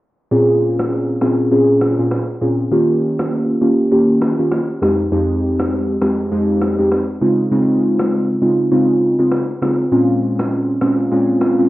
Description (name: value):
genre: afrobeats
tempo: 100 BPM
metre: 4/4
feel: swing 58% on 16ths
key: Bb dorian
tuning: A4 = 440 Hz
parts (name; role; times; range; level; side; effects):
- glassy digital keys; accompaniment; 0.3-11.7 s; F2 to Ab4; -14 LUFS; equal; chorus, cassette tape
- electronic shaker, rim click and finger snaps; drums; 0.3-11.7 s; none; -25 LUFS; equal; none
room: light reverb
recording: home recording on cassette, low-pass filter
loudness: -14 LUFS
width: side -16 dB against mid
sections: 0.3-11.7 A section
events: filter sweep 0.3-11.7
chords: 0.3 Bbm7; 2.7 Eb7; 4.8 Fm7; 7.2 Dbmaj7; 9.9 Bbm7